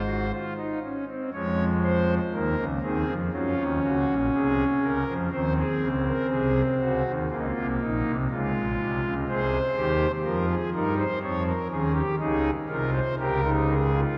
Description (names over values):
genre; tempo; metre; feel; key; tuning
classical, baroque-style 3-part fugue for pipe organ; 61 BPM; 4/4; straight; Db major; A4 = 440 Hz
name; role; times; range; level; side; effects
pipe organ, foundations; solo; 0.0-14.2 s; Ab1 to Db5; -26 LUFS; equal; none
room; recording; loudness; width
wet cathedral reverb, RT60 4.4 s; none; -26 LUFS; mono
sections
0.0-1.3 A section; 1.3-14.2 B section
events
none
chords
0.0 Ab; 1.3 Db/F; 3.3 Gb; 5.3 Ab7; 7.3 Db; 9.3 Ab/C; 11.2 Db; 13.2 Eb7/Db